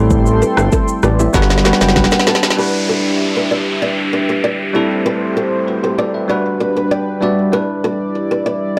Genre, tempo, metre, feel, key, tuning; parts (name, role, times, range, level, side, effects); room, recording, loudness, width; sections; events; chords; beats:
afrobeats; 97 BPM; 4/4; straight; E minor; A4 = 439 Hz
bell-like tine electric piano; accompaniment; 0.0-8.8 s; G3 to A5; -20 LUFS; equal
warm analog pad; sustained chords; 0.0-8.8 s; G3 to C6; -23 LUFS; equal; chorus
fat analog bass; bass; 0.0-2.1 s; F#1 to A1; -17 LUFS; equal
afro-pop drum kit; drums; 0.1-2.6 s; kick drum, rim click, shaker, snare drum; -17 LUFS; equal
nylon-string guitar; riff; 0.4-8.8 s; D4 to D5; -22 LUFS; equal; digital delay
downlifter; sound effects; 2.6-7.5 s; -25 LUFS; equal
moderate studio reverb, RT60 0.6 s; blown-out, overdriven recording, overdrive; -15 LUFS; mono
0.0-2.6 A section; 2.6-8.8 B section
tine electric piano fill 0.7-2.6, 6.6-7.5; drum fill 1.3-2.6
0.0 Am7; 1.3 Gmaj7; 2.6 Em7; 4.7 Am7; 6.3 Gmaj7; 7.5 Em7
| 0.11 0.72 1.34 1.96 | 2.58 3.20 3.82 4.44 | 5.05 5.67 6.29 6.91 | 7.53 8.15 8.77